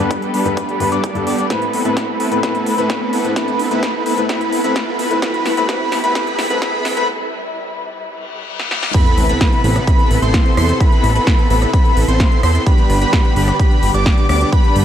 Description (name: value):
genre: EDM, festival progressive house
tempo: 129 BPM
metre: 4/4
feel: straight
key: A minor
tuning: A4 = 437 Hz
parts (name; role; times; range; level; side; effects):
- warm concert grand piano; accompaniment; 0.0-7.1 s; G2 to B4; -24 LUFS; left 3 dB; sidechain pumping, dub echo
- dark studio string section; sustained chords; 0.0-14.8 s; C3 to A4; -27 LUFS; left 1 dB; vintage 12-bit sampler grit, sidechain pumping
- wide unison lead; arpeggios; 0.0-14.8 s; B5 to D6; -21 LUFS; equal; wide subtle chorus, sidechain pumping, dub echo
- supersaw chords; riff; 0.0-14.8 s; G3 to D5; -20 LUFS; right 1 dB; sidechain pumping, low-pass filter, dub echo
- riser, reverse cymbal and sub drop; sound effects; 0.1-10.8 s; none; -28 LUFS; left 1 dB; none
- big-room dance drum kit; drums; 0.1-14.8 s; crash cymbal, hi-hat, rim click, snare drum; -24 LUFS; equal; none
- electronic kick drum; drums; 0.1-14.6 s; none; -15 LUFS; equal; high-pass filter on kick, high-pass filter on room
- fat analog bass; bass; 9.2-14.8 s; G1 to E2; -15 LUFS; equal; tube saturation, sidechain pumping
room: light reverb, digital ambience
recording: dark, warm production, high-pass filter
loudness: -13 LUFS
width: side -10 dB against mid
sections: 0.0-8.9 A section; 8.9-14.8 B section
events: build-up 0.0-8.9; filter sweep on supersaw synth 0.0-8.9; filter sweep on analog synth lead 0.0-8.9; filter sweep 0.0-8.9; drum fill 1.5-7.1, 8.6-8.9; break 7.1-8.9; reverse cymbal 8.2-8.9; drop 8.9-14.8; impact 8.9-10.8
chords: 0.0 G; 1.5 Amadd9; 5.2 C; 8.9 Amadd9; 12.7 G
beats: 0.11 0.57 1.04 | 1.50 1.97 2.43 2.90 | 3.36 3.83 4.29 4.76 | 5.22 5.69 6.15 6.62 | 7.08 7.55 8.01 8.48 | 8.94 9.41 9.87 10.34 | 10.80 11.27 11.73 12.20 | 12.66 13.13 13.60 14.06 | 14.53